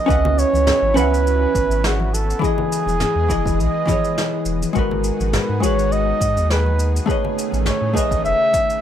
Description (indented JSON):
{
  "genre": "sunset chillout",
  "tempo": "103 BPM",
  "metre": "4/4",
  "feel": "swing 55% on 16ths",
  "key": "G# phrygian",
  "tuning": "A4 = 439 Hz",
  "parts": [
    { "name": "mellow flugelhorn", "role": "melody", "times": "0.0-8.8 s", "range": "F#4 to E5", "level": "-20 LUFS", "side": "right 1 dB", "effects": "tape echo, plate reverb" },
    { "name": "vintage hollow-body jazz guitar", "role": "accompaniment", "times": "0.0-8.8 s", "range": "E3 to F#5", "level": "-22 LUFS", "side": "moving between left 7 dB and right 8 dB", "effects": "auto-pan, tape echo, plate reverb" },
    { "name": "lush unison pad", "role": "sustained chords", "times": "0.0-8.8 s", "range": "C#3 to D#5", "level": "-30 LUFS", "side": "right 1 dB", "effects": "chorus, plate reverb" },
    { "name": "warm sub bass", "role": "bass", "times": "0.1-8.3 s", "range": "E1 to A2", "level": "-20 LUFS", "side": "equal", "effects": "tube saturation" },
    { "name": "electronic kick drum", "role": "drums", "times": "0.1-8.7 s", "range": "none", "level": "-24 LUFS", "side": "equal", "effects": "none" },
    { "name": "soft brush drum kit", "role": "drums", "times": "0.1-8.8 s", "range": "shaker, snare drum, toms", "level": "-26 LUFS", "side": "left 1 dB", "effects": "none" },
    { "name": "congas", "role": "percussion", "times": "0.2-8.1 s", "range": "none", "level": "-32 LUFS", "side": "left 2 dB", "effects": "none" }
  ],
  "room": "moderate studio ambience, RT60 0.5 s",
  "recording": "rough home demo mix",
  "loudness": "-16 LUFS",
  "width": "side -10 dB against mid",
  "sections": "0.0-8.8 A section",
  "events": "none",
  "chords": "0.1 C#m11; 2.4 Emaj7; 4.8 G#m9; 7.1 Amaj9#11"
}